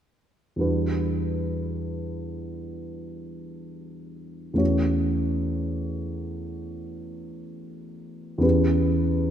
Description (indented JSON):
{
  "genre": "classical",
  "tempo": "free time",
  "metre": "none",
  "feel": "none",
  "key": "E minor",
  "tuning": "A4 = 445 Hz",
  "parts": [
    { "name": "dark baby grand piano", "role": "accompaniment", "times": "0.6-9.3 s", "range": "E2 to C#5", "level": "-25 LUFS", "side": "equal", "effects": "none" }
  ],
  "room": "moderate concert hall reverb, RT60 2.1 s",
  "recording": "none",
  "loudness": "-23 LUFS",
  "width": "side -9 dB against mid",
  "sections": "0.6-9.3 A section",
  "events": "none",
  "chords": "0.6 Em9; 4.6 F#m7/E; 8.4 Em6",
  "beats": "free time"
}